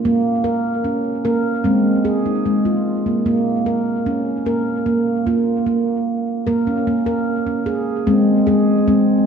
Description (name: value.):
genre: world meditative, meditative tuned percussion.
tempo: 75 BPM.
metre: 4/4.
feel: straight.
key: Bb minor.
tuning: A4 = 440 Hz.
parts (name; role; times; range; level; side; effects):
handpan; solo; 0.0-9.3 s; Ab3 to Bb4; -16 LUFS; right 1 dB; diffuse ambient delay.
room: wet echo chamber reverb, RT60 2.0 s.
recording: dark, warm production, lossy compression artefacts.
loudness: -16 LUFS.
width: side -7 dB against mid.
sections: 0.0-4.9 A section; 4.9-9.3 B section.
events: none.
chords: 0.0 Bbm; 1.6 Ab; 3.3 Bbm; 8.1 Ab.